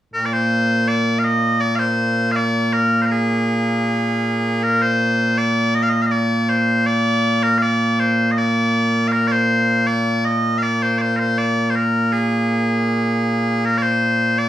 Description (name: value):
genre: scottish traditional, Scottish pipe music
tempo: 80 BPM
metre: 3/4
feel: straight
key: Bb mixolydian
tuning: A4 = 436 Hz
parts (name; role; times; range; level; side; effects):
- loud bright bagpipes; solo; 0.1-14.5 s; Bb2 to F5; -16 LUFS; equal; none
room: wet studio reverb, RT60 0.6 s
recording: rough home demo mix, studio reverb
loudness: -16 LUFS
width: side -12 dB against mid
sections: 0.1-14.5 A section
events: none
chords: none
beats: | 0.14 0.89 1.64 | 2.39 3.14 3.89 | 4.64 5.39 6.14 | 6.89 7.64 8.39 | 9.14 9.89 10.64 | 11.39 12.14 12.89 | 13.64 14.39